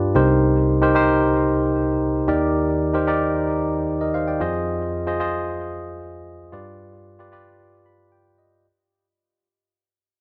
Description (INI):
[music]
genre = pop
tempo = 113 BPM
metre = 4/4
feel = straight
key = C minor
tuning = A4 = 440 Hz
[part]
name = tine electric piano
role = solo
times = 0.0-8.7 s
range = C2 to B5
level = -21 LUFS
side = equal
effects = tape echo
[sound]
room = moderate plate reverb, RT60 3.3 s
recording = dark, warm production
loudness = -20 LUFS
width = mono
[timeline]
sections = 0.2-8.7 A section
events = fade-out 0.2-8.7; tine electric piano fill 7.6-8.7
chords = 0.2 Cm7; 2.3 Ebmaj7; 4.4 Fm7; 6.5 G7